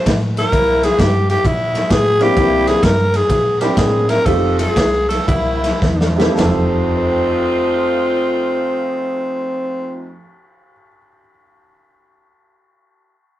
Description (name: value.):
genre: electric blues shuffle.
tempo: 104-130 BPM.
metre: 4/4.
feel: swing 66% on 8ths.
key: F mixolydian.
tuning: A4 = 440 Hz.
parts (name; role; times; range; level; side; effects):
growling tenor saxophone; melody; 0.0-10.1 s; C4 to Bb4; -17 LUFS; equal; none.
vintage muted fingered electric bass; bass; 0.1-10.1 s; F1 to Bb2; -21 LUFS; equal; none.
raw garage drum kit; drums; 0.1-6.6 s; kick drum, ride cymbal, snare drum, toms; -18 LUFS; equal; none.
mellow saxophone section; stabs; 0.4-10.1 s; A3 to F4; -22 LUFS; left 1 dB; none.
warm baby grand piano; accompaniment; 2.2-11.4 s; F2 to Eb7; -21 LUFS; right 3 dB; none.
room: moderate small room reverb, RT60 0.5 s.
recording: rough rehearsal-room recording.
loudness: -13 LUFS.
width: side -13 dB against mid.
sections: 0.0-6.4 A section; 6.4-11.0 B section.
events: slowing down 2.4-6.4; drum fill 5.8-6.4.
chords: 0.0 C7; 4.3 F7; 5.3 C7; 6.4 F7.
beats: 0.06 | 0.52 0.98 1.45 1.91 | 2.37 2.83 3.30 3.78 | 4.27 4.77 5.29 5.83 | 6.39 6.97 7.54 8.12 | 8.70 9.27 9.85 10.43.